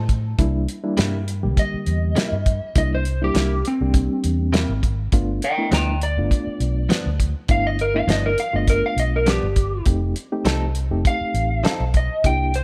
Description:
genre	straight-eighth soul blues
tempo	101 BPM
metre	4/4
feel	swing 55% on 16ths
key	unclear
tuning	A4 = 440 Hz
part	electric slide guitar	melody	0.0-12.6 s	C4 to Bb5	-26 LUFS	equal	none
part	vintage muted fingered electric bass	bass	0.0-12.6 s	F1 to A2	-25 LUFS	equal	none
part	cloth-damped thuddy drum kit	drums	0.1-12.6 s	hi-hat, kick drum, snare drum	-23 LUFS	equal	none
part	reed electric piano	accompaniment	0.4-12.5 s	D3 to G4	-29 LUFS	equal	fast tremolo
part	direct-recorded clean electric guitar	stabs	1.0-11.8 s	G2 to A4	-31 LUFS	equal	spring reverb
room	studio reverb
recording	none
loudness	-21 LUFS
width	mono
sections	0.0-12.6 A section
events	none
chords	0.4 C7; 5.1 G7; 9.9 F7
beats	| 0.39 0.98 1.57 2.16 | 2.75 3.35 3.94 4.53 | 5.12 5.71 6.31 6.90 | 7.49 8.09 8.68 9.27 | 9.87 10.46 11.05 11.65 | 12.25

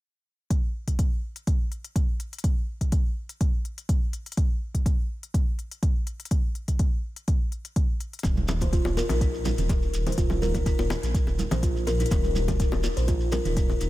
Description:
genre	afro house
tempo	124 BPM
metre	4/4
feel	swing 53% on 16ths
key	unclear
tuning	A4 = 439 Hz
part	electronic hi-hat	drums	0.5-13.9 s	none	-41 LUFS	left 5 dB	none
part	electronic kick drum	drums	0.5-13.7 s	none	-24 LUFS	equal	none
part	dark detuned saw bass	bass	8.2-13.9 s	Eb1 to Bb1	-27 LUFS	equal	sidechain pumping
part	bongos	percussion	8.2-13.8 s	none	-34 LUFS	left 4 dB	none
part	shekere	percussion	8.2-13.9 s	none	-41 LUFS	right 2 dB	none
part	congas	percussion	8.4-13.8 s	none	-35 LUFS	right 5 dB	none
part	buzzing kalimba	arpeggios	8.6-13.9 s	Eb4 to C5	-30 LUFS	left 1 dB	sidechain pumping, analog delay
room	studio ambience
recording	none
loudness	-24 LUFS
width	side -16 dB against mid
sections	0.5-13.9 A section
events	none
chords	none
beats	| 0.50 0.99 1.47 1.96 | 2.44 2.92 3.41 3.89 | 4.37 4.86 5.34 5.83 | 6.31 6.79 7.28 7.76 | 8.24 8.73 9.21 9.70 | 10.18 10.66 11.15 11.63 | 12.12 12.60 13.08 13.57

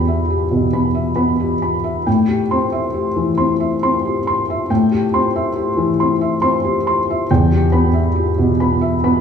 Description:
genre	neoclassical minimalist piano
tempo	69 BPM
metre	3/4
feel	rubato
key	A minor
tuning	A4 = 440 Hz
part	felt-muted upright piano	solo	0.0-9.2 s	E2 to C6	-14 LUFS	left 1 dB	none
room	wet recital hall reverb, RT60 1.3 s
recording	recorded in a church or concert hall, small room reverb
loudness	-14 LUFS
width	side -7 dB against mid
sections	0.0-9.2 A section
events	none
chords	0.0 Em; 2.1 Am7; 7.3 Em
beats	0.29 1.17 | 2.07 2.95 3.83 | 4.70 5.56 6.42 | 7.29 8.16 9.04

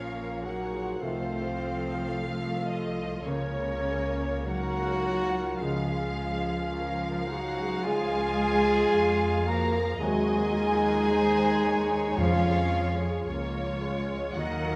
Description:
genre	classical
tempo	54 BPM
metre	4/4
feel	rubato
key	unclear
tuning	A4 = 441 Hz
part	muted symphonic violin section	melody	0.0-14.8 s	C5 to Gb5	-40 LUFS	equal	none
part	concert flute	second line	0.0-14.8 s	Db5 to Bb5	-39 LUFS	equal	none
part	muted chamber violin section	second line	0.0-14.8 s	Db5 to Bb5	-40 LUFS	equal	none
part	warm clarinet	second line	0.0-14.8 s	Bb3 to Gb4	-40 LUFS	equal	none
part	muted symphonic viola section	accompaniment	0.0-14.8 s	F3 to Bb4	-39 LUFS	equal	none
part	clear French horn section	sustained chords	0.0-14.8 s	Db4 to Bb4	-32 LUFS	equal	none
part	concert harp	arpeggios	0.0-14.8 s	Bb2 to Bb5	-41 LUFS	equal	none
part	muted symphonic cello section	bass	0.0-14.8 s	Db3 to Bb3	-35 LUFS	equal	none
part	muted symphonic double bass section	bass	0.0-14.8 s	Bb1 to F2	-38 LUFS	equal	none
part	clear trombone section	sustained chords	1.0-14.8 s	Bb2 to Bb3	-41 LUFS	equal	none
part	timpani	percussion	12.2-13.8 s	F2	-35 LUFS	equal	none
room	wet recital hall reverb, RT60 1.4 s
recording	none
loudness	-28 LUFS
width	mono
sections	0.0-14.8 A section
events	none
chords	0.0 Bbm; 1.0 F7/C; 3.3 Bbm/Db; 5.6 Db; 10.0 Ab7/Eb; 12.2 Db/F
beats	| 1.01 2.14 3.26 4.46 | 5.61 6.72 7.83 8.93 | 10.01 11.10 12.18 13.28 | 14.37

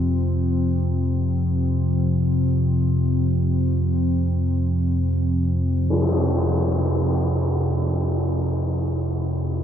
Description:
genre	dark ambient drone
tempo	free time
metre	none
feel	none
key	unclear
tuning	A4 = 440 Hz
part	deep rumbling drone	drone	0.0-9.6 s	F2 to C3	-20 LUFS	equal	built-in reverb
part	tam-tam	percussion	5.9-6.1 s	none	-24 LUFS	left 1 dB	low-pass filter on cymbals
room	wet huge ambient reverb, RT60 8.2 s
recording	in a vast, echoing space, cassette tape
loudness	-19 LUFS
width	side -9 dB against mid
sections	0.0-9.6 A section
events	none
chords	0.0 F5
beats	free time

